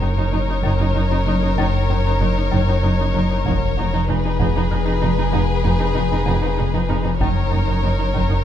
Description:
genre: cinematic, suspense film score.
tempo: 96 BPM.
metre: 3/4.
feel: straight.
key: Eb minor.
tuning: A4 = 436 Hz.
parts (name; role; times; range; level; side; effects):
rich chamber violin section; melody; 0.0-8.4 s; Cb5 to Db5; -26 LUFS; left 4 dB; none.
clear studio violin section; second line; 0.0-8.4 s; Ab4 to Bb4; -27 LUFS; left 2 dB; none.
rich chamber viola section; accompaniment; 0.0-8.4 s; Eb4; -28 LUFS; right 1 dB; none.
folk marimba with hard mallets; riff; 0.0-8.3 s; F2 to Gb3; -22 LUFS; left 3 dB; none.
rich chamber cello section; bass; 0.0-8.4 s; F2 to Gb2; -25 LUFS; right 3 dB; none.
rich chamber double bass section; bass; 0.0-8.2 s; F1 to Gb1; -26 LUFS; right 4 dB; none.
saturated sub bass; drone; 0.0-8.4 s; F1 to Gb1; -23 LUFS; equal; none.
taiko ensemble; drums; 0.6-8.4 s; none; -30 LUFS; equal; none.
room: moderate scoring stage reverb, RT60 1.6 s.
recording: minimal, uncompressed stereo recording.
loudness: -16 LUFS.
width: side -10 dB against mid.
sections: 0.0-8.4 A section.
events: none.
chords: 0.0 Ebm7/Gb; 3.5 Fm7b5; 7.2 Ebm7/Gb.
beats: 0.33 0.96 | 1.58 2.21 2.83 | 3.46 4.08 4.71 | 5.33 5.96 6.58 | 7.21 7.83.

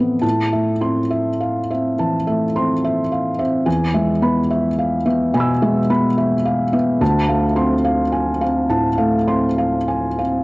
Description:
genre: neoclassical minimalist piano.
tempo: 71 BPM.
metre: 4/4.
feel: rubato.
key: A harmonic minor.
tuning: A4 = 442 Hz.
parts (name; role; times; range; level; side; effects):
felt-muted upright piano; solo; 0.0-10.4 s; D2 to E6; -16 LUFS; equal; none.
room: light reverb, small room ambience.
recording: home recording on cassette.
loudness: -16 LUFS.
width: side -23 dB against mid.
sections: 0.2-10.4 A section.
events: none.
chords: 0.2 Am; 3.7 E; 7.0 Dm7.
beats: | 0.23 1.12 1.98 2.84 | 3.67 4.50 5.34 6.18 | 7.01 7.85 8.70 9.57.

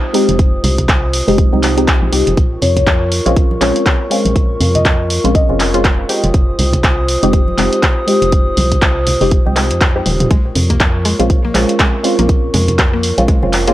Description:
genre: deep house.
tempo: 121 BPM.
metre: 4/4.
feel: swing 58% on 16ths.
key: Bb minor.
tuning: A4 = 440 Hz.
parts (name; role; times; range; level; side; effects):
dark analog pad; sustained chords; 0.0-13.7 s; F4 to Eb6; -21 LUFS; equal; chorus, vintage 12-bit sampler grit, sidechain pumping.
filtered dub chord stab; stabs; 0.0-13.7 s; Ab3 to G4; -17 LUFS; equal; phaser, sidechain pumping, analog delay.
punchy analog drum machine; drums; 0.1-13.7 s; handclaps, hi-hat, toms; -18 LUFS; equal; none.
organ-like FM bass; bass; 0.3-13.7 s; Eb1 to F2; -17 LUFS; equal; sidechain pumping.
congas; percussion; 0.3-13.5 s; none; -23 LUFS; right 2 dB; none.
electronic kick drum; drums; 0.4-13.4 s; none; -13 LUFS; equal; none.
marimba with soft mallets; melody; 2.6-5.7 s; Db5 to Eb5; -20 LUFS; left 2 dB; tape echo.
mallet-like synth pluck; arpeggios; 10.3-13.7 s; Ab3 to Bb3; -22 LUFS; left 2 dB; chorus, sidechain pumping, tape echo.
room: light reverb, digital ambience.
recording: dry, gritty hardware recording.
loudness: -11 LUFS.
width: side -14 dB against mid.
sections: 0.0-13.7 A section.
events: filter sweep on synth stab 0.0-13.7; drum fill 10.1.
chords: 0.0 Fm7; 2.4 Bbm7; 6.1 Fm7; 10.3 Bbm7.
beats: | 0.39 0.89 1.38 1.88 | 2.37 2.87 3.37 3.86 | 4.36 4.85 5.35 5.84 | 6.34 6.84 7.33 7.83 | 8.32 8.82 9.32 9.81 | 10.31 10.80 11.30 11.80 | 12.29 12.79 13.28.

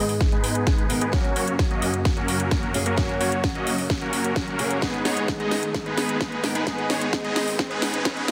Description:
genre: EDM, festival progressive house.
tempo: 130 BPM.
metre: 4/4.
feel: straight.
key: G# minor.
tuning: A4 = 441 Hz.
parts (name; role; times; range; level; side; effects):
fingerpicked old ladder-braced acoustic guitar; accompaniment; 0.0-8.3 s; G#2 to A#4; -32 LUFS; equal; sidechain pumping, tape echo.
lush unison pad; sustained chords; 0.0-8.3 s; F#2 to B3; -36 LUFS; equal; chorus, phaser, sidechain pumping.
supersaw chords; riff; 0.0-8.2 s; F#3 to D#5; -29 LUFS; equal; sidechain pumping, low-pass filter, tape echo.
riser; sound effects; 4.1-8.3 s; none; -41 LUFS; equal; none.
house drum kit; drums; 0.1-8.3 s; hi-hat, snare drum; -31 LUFS; equal; soft clipping on snare.
electronic kick drum; drums; 0.2-8.1 s; none; -28 LUFS; equal; overdrive.
room: light reverb.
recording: dense, heavily limited modern master, high-pass filter.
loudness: -24 LUFS.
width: mono.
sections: 0.0-8.3 A section.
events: build-up 0.0-8.3; drum fill 0.0-8.3; filter sweep on supersaw synth 0.0-8.3; filter sweep on analog synth pad 0.0-8.3; filter sweep 0.0-8.3.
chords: 0.0 G#m; 1.1 F#; 4.8 G#m.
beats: 0.21 0.67 | 1.13 1.59 2.05 2.51 | 2.98 3.44 3.90 4.36 | 4.82 5.28 5.75 6.21 | 6.67 7.13 7.59 8.05.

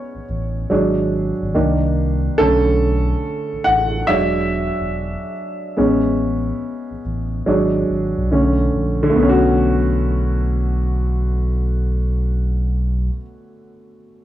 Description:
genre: lo-fi hip hop.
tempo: 71 BPM.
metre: 4/4.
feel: swing 66% on 16ths.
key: B dorian.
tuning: A4 = 440 Hz.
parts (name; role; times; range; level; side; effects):
warm upright piano; accompaniment; 0.0-14.2 s; D3 to F#5; -18 LUFS; equal; cassette tape, plate reverb.
sub bass with octave; bass; 0.1-13.1 s; E1 to C2; -20 LUFS; equal; none.
room: moderate studio reverb, RT60 0.5 s.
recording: studio reverb.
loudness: -16 LUFS.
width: side -12 dB against mid.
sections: 0.0-9.2 A section; 9.2-12.5 B section.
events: upright piano solo 0.0-9.2.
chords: 0.0 Amaj9; 0.7 F#sus2/G#; 1.6 Cm7; 2.4 Bm7; 4.1 E7; 5.8 Amaj9; 7.5 E7/G#; 8.3 Bm7.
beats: 0.71 1.55 | 2.40 3.24 4.09 4.93 | 5.78 6.62 7.47 8.31 | 9.16 10.00 10.85 11.69.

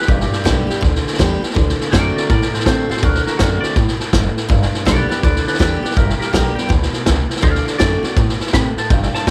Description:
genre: rockabilly.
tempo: 163 BPM.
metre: 4/4.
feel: swing 64% on 8ths.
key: G major.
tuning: A4 = 440 Hz.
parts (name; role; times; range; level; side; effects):
twangy electric guitar; melody; 0.0-9.3 s; F#4 to B5; -25 LUFS; equal; phaser, plate reverb, analog delay.
picked steel-string acoustic guitar; accompaniment; 0.0-9.3 s; G2 to G4; -24 LUFS; equal; plate reverb.
vintage drum kit; drums; 0.0-9.3 s; hi-hat, kick drum, snare drum; -19 LUFS; equal; none.
upright bass; bass; 0.1-9.3 s; F#1 to C3; -21 LUFS; equal; none.
room: light reverb.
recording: none.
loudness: -16 LUFS.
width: mono.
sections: 0.0-9.3 A section.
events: clean electric guitar solo 0.0-9.3.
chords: 0.0 G; 1.6 D7; 4.5 G; 7.4 D7.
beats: | 0.09 0.46 0.82 1.19 | 1.56 1.93 2.30 2.66 | 3.03 3.40 3.77 4.13 | 4.50 4.87 5.24 5.60 | 5.97 6.34 6.70 7.07 | 7.44 7.80 8.17 8.54 | 8.90 9.27.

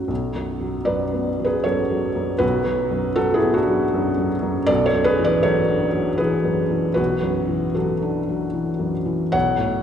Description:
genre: neoclassical minimalist piano.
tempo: 78 BPM.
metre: 3/4.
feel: rubato.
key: unclear.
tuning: A4 = 442 Hz.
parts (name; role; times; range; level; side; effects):
felt-muted upright piano; solo; 0.0-9.8 s; B1 to F#5; -19 LUFS; equal; none.
room: wet church reverb, RT60 3.3 s.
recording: recorded in a church or concert hall.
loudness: -19 LUFS.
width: side -8 dB against mid.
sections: 0.1-9.8 A section.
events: none.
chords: 0.1 Dadd9/B.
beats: | 0.10 0.88 1.66 | 2.42 3.19 3.94 | 4.69 5.45 6.21 | 6.98 7.78 8.55 | 9.34.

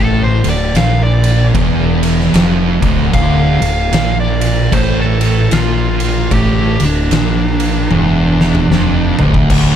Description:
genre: stoner and doom metal.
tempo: 75 BPM.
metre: 4/4.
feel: swing 61% on 8ths.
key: D minor.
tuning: A4 = 440 Hz.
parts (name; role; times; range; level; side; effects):
fuzz lead guitar; melody; 0.0-9.2 s; D4 to F5; -20 LUFS; equal; distortion, tape echo.
thick fuzz guitar; riff; 0.0-9.8 s; D2 to Bb2; -14 LUFS; right 1 dB; distortion.
fuzz fingered electric bass; bass; 0.0-9.8 s; D1 to Bb1; -17 LUFS; equal; overdrive.
oversized low-tuned drum kit; drums; 0.4-9.7 s; crash cymbal, kick drum, ride cymbal, snare drum, toms; -17 LUFS; equal; none.
room: small room ambience.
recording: dark, warm production.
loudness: -10 LUFS.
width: side -9 dB against mid.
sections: 0.0-9.5 A section.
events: lead electric guitar solo 0.0-9.5; drum fill 7.9-9.5.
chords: 0.0 Dm.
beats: 0.74 1.54 2.33 | 3.13 3.92 4.72 5.52 | 6.31 7.11 7.90 8.70 | 9.49.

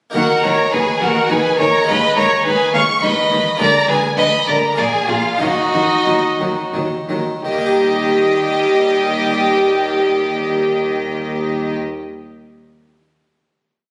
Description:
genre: classical, baroque-style concerto movement with solo episodes.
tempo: 84-105 BPM.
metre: 3/4.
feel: straight.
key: unclear.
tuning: A4 = 439 Hz.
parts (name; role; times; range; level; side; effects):
harpsichord; accompaniment; 0.1-12.0 s; Bb2 to Eb5; -26 LUFS; equal; none.
dark chamber double bass section; bass; 0.1-11.7 s; Bb1 to Eb2; -30 LUFS; equal; none.
rich violin; melody; 0.2-11.7 s; Gb4 to F5; -20 LUFS; equal; none.
warm symphonic violin section; melody; 0.2-11.7 s; Eb5 to Db6; -24 LUFS; equal; none.
rich chamber violin section; second line; 0.2-11.7 s; Eb4 to Db5; -23 LUFS; equal; none.
warm studio viola section; accompaniment; 0.2-11.7 s; Gb3 to Bb3; -26 LUFS; equal; none.
rich chamber cello section; bass; 0.2-11.7 s; Bb2 to Eb3; -28 LUFS; equal; none.
room: wet recital hall reverb, RT60 1.6 s.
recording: recorded on a phone in the room, studio reverb, compression.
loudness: -16 LUFS.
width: mono.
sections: 0.2-7.4 ritornello; 7.4-11.7 final chord.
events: slowing down 2.7-7.4.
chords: 0.2 Ebm; 1.9 Fm7b5/Eb; 3.6 Bb7/D; 4.8 Bb7; 5.4 Ebm; 7.4 Eb.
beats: | 0.15 0.73 1.31 | 1.88 2.46 3.03 | 3.60 4.18 4.78 | 5.41 6.06 6.73 | 7.44 8.15 8.86 | 9.57 10.28 10.99.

